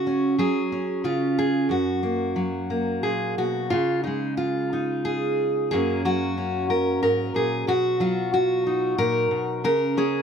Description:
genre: folk, solo fingerstyle acoustic guitar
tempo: 91 BPM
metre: 3/4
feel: rubato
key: F# major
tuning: A4 = 440 Hz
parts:
  - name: fingerpicked steel-string acoustic guitar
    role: solo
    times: 0.0-10.2 s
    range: F#2 to A#4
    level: -21 LUFS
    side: equal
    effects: none
room: little or no reverb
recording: close, detailed microphones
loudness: -21 LUFS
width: side -7 dB against mid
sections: 0.0-3.7 A section; 3.7-10.2 B section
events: none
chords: 0.0 C#sus4; 1.0 N.C.; 1.7 F#; 3.7 C#add9; 5.7 F#add9; 7.7 B; 9.6 N.C.

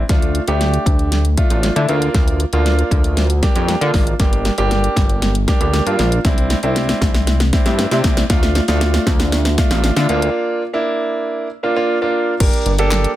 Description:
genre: dance-pop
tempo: 117 BPM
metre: 4/4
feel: straight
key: G dorian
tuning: A4 = 440 Hz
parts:
  - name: clear concert grand piano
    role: accompaniment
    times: 0.0-13.1 s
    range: A3 to Bb4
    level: -19 LUFS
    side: right 2 dB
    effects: sidechain pumping
  - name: chorused synth bass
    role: bass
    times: 0.0-13.1 s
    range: G1 to D3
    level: -17 LUFS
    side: equal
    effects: sidechain pumping
  - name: pop drum kit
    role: drums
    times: 0.1-13.2 s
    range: crash cymbal, handclaps, hi-hat, kick drum, snare drum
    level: -17 LUFS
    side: equal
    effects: none
room: digital ambience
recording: none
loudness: -14 LUFS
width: side -14 dB against mid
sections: 0.0-12.4 A section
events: build-up 0.0-12.4; drum fill 0.0-10.4; break 10.4-12.4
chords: 0.1 Dm; 1.9 Bb/D; 4.2 Gm; 6.2 Cadd9; 8.3 Dm; 10.1 Bb/D; 12.4 Gm

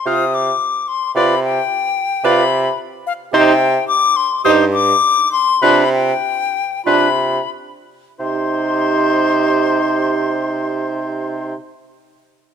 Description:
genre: quick classical-period movement for wind quintet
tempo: 86-111 BPM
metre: 4/4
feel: straight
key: C minor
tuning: A4 = 441 Hz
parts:
  - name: silver concert flute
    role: melody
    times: 0.0-11.5 s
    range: F5 to Eb6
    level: -18 LUFS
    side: left 7 dB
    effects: none
  - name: clear oboe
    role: second line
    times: 0.1-11.5 s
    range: B4 to F5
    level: -21 LUFS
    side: left 2 dB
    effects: none
  - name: warm French horn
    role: accompaniment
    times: 0.1-11.6 s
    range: D4 to F4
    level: -20 LUFS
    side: right 3 dB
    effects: none
  - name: warm clarinet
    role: accompaniment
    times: 0.1-11.5 s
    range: F4 to C5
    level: -23 LUFS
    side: right 11 dB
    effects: none
  - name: clear bassoon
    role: bass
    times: 0.1-11.5 s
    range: G2 to C3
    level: -20 LUFS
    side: right 3 dB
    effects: none
room: moderate scoring stage reverb, RT60 1.9 s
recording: close, detailed microphones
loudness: -14 LUFS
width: side -8 dB against mid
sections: 0.0-8.2 A section; 8.2-10.9 B section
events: slowing down 2.2-8.2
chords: 0.0 F5/C; 1.2 G7/C; 3.3 Cm; 5.6 G7/C; 8.2 Cm

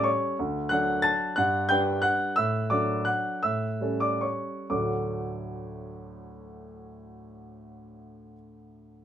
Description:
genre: classical, piano waltz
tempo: 124-193 BPM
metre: 3/4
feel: rubato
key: D major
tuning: A4 = 440 Hz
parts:
  - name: warm grand piano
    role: solo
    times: 0.0-9.0 s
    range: D2 to A6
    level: -26 LUFS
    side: equal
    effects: none
room: light reverb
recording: minimal, uncompressed stereo recording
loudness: -24 LUFS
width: side -10 dB against mid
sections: 0.0-4.7 A section; 4.7-7.4 B section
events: slowing down 1.9-4.7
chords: 0.4 D; 1.4 Gmaj7; 2.4 D/A; 3.4 A7; 4.7 D

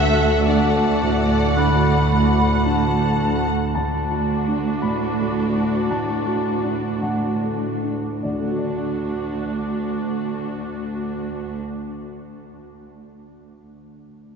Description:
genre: cinematic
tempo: 49-56 BPM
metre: 4/4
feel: rubato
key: D major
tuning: A4 = 438 Hz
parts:
  - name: clear studio violin section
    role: melody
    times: 0.0-3.5 s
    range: F#5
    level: -28 LUFS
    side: left 3 dB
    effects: none
  - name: rich studio violin section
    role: second line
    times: 0.0-2.7 s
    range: D5 to E5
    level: -26 LUFS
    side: left 1 dB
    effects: none
  - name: dark concert grand piano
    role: accompaniment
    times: 0.0-14.4 s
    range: D2 to B5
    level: -26 LUFS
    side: left 1 dB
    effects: none
  - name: rich studio viola section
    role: accompaniment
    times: 0.0-11.6 s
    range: A3 to F#4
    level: -29 LUFS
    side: right 1 dB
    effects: none
  - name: mellow French horn section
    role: sustained chords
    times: 0.0-3.3 s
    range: A3 to A4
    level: -28 LUFS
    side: left 4 dB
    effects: none
  - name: concert harp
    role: arpeggios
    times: 0.0-7.1 s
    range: none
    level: barely audible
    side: none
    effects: none
  - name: rich studio cello section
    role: bass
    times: 0.0-11.6 s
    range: D2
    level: -25 LUFS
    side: right 3 dB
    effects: none
  - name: rich studio double bass section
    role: bass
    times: 0.0-3.5 s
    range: D2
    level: -23 LUFS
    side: right 2 dB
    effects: none
  - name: mellow silver concert flute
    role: second line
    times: 0.5-3.7 s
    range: A5 to B5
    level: -27 LUFS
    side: left 1 dB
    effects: none
  - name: bright oboe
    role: second line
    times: 1.6-2.0 s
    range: F#5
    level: -33 LUFS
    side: equal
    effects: none
  - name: warm clarinet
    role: second line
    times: 1.6-2.0 s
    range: none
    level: barely audible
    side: none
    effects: none
room: wet cathedral reverb, RT60 6.4 s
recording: recorded in a church or concert hall, nothing above 7.6 kHz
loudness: -19 LUFS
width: side -6 dB against mid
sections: 0.0-3.7 A section; 3.7-8.2 B section; 8.2-12.9 C section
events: slowing down 0.0-8.2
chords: 0.0 D

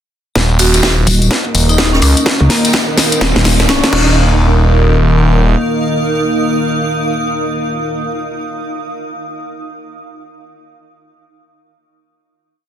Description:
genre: bass house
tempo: 126 BPM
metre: 4/4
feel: swing 62% on 16ths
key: unclear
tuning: A4 = 440 Hz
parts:
  - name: dark analog pad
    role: sustained chords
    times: 1.0-8.0 s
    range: Eb3 to Eb5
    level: -20 LUFS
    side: left 1 dB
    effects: chorus, sidechain pumping
  - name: phased detuned saw bass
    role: bass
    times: 0.4-5.6 s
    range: Eb1 to Db2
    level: -11 LUFS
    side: equal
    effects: phaser, sidechain pumping
  - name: electronic kick drum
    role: drums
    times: 0.4-4.0 s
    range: none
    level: -17 LUFS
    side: equal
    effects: high-pass filter on kick
  - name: house drum kit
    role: drums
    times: 0.4-4.0 s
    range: crash cymbal, hi-hat, snare drum, tambourine, woodblock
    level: -14 LUFS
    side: left 1 dB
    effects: soft clipping on snare
  - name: open jazz drum kit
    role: drums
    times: 0.4-3.9 s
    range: hi-hat, snare drum, tambourine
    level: -22 LUFS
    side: right 1 dB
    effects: sidechain pumping on hats, high-pass filter on hats, high-pass filter on snare, sidechain pumping on perc, high-pass filter on perc, high-pass filter on room
  - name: riser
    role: sound effects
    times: 1.9-4.2 s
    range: none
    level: -23 LUFS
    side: right 1 dB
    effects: none
  - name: granular cloud pad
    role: texture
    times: 1.3-8.5 s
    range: Eb4 to Eb6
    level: -20 LUFS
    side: right 2 dB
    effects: built-in reverb, sidechain pumping
  - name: vibraphone with medium mallets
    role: melody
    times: 0.6-4.2 s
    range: Bb3 to Gb4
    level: -20 LUFS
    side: equal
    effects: dub echo
  - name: pulsing pluck wobble bass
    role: bass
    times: 1.1-3.8 s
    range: Eb1 to Db2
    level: -12 LUFS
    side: equal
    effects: chorus, overdrive, sidechain pumping
room: light reverb, studio ambience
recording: dense, heavily limited modern master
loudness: -10 LUFS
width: side -10 dB against mid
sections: 0.4-4.2 build; 4.2-8.0 final chord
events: build-up 0.4-4.2; drum fill 0.4-4.2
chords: 0.4 Eb5

